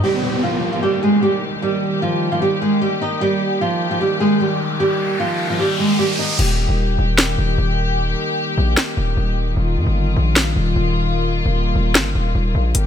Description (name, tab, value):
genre	hip hop, trap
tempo	151 BPM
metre	4/4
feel	half-time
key	Eb major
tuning	A4 = 437 Hz
part	flamenco guitar	melody	0.0-6.4 s	F3 to Eb5	-18 LUFS	right 2 dB	low-pass filter, digital delay
part	dark studio string section	sustained chords	0.0-12.9 s	D3 to G4	-22 LUFS	left 2 dB	none
part	distorted 808-style bass	bass	0.0, 6.4-12.9 s	Eb1 to G2	-18 LUFS	equal	distortion
part	downlifter and riser	sound effects	0.0-6.4 s	none	-25 LUFS	equal	none
part	trap drum kit	drums	6.4-12.8 s	crash cymbal, hi-hat, snare drum	-18 LUFS	equal	none
room	light reverb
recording	none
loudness	-16 LUFS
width	side -8 dB against mid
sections	0.0-6.4 A section; 6.4-12.9 B section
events	riser 4.2-6.4; hi-hats muted 6.4-12.7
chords	0.0 Eb